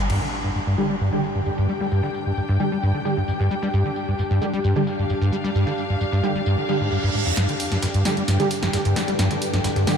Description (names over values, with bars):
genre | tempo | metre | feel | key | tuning
driving peak-time techno | 132 BPM | 4/4 | straight | unclear | A4 = 440 Hz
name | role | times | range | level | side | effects
acid bass, saw | riff | 0.0-9.9 s | F2 to G3 | -22 LUFS | equal | ensemble chorus
dusty soul sampler-style drum kit | drums | 0.1-10.0 s | hi-hat, snare drum, tambourine | -40 LUFS | left 1 dB | none
punchy analog drum machine | drums | 0.1-0.2, 7.4-10.0 s | crash cymbal, hi-hat, snare drum | -28 LUFS | equal | none
impact, reverse cymbal and riser | sound effects | 0.1-1.9, 6.7-10.0 s | none | -33 LUFS | right 2 dB | none
muted studio string section | texture | 0.1-10.0 s | D4 to G5 | -28 LUFS | left 1 dB | none
rave stab | stabs | 0.8-10.0 s | D3 to G4 | -27 LUFS | right 2 dB | chorus, built-in reverb, diffuse ambient delay
overtone-sweeping drone | drone | 8.2-10.0 s | G2 to D3 | -30 LUFS | left 1 dB | chorus, built-in reverb, phaser
room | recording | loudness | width
moderate huge ambient reverb, RT60 7.4 s | dreamy mix soaked in reverb | -20 LUFS | side -7 dB against mid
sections
0.1-7.4 A section; 7.4-10.0 B section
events
impact 0.1-1.9; filter sweep on synth stab 0.1-7.4; reverse cymbal 6.7-7.4; build-up 7.4-10.0; drum fill 7.4-10.0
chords
0.1 G5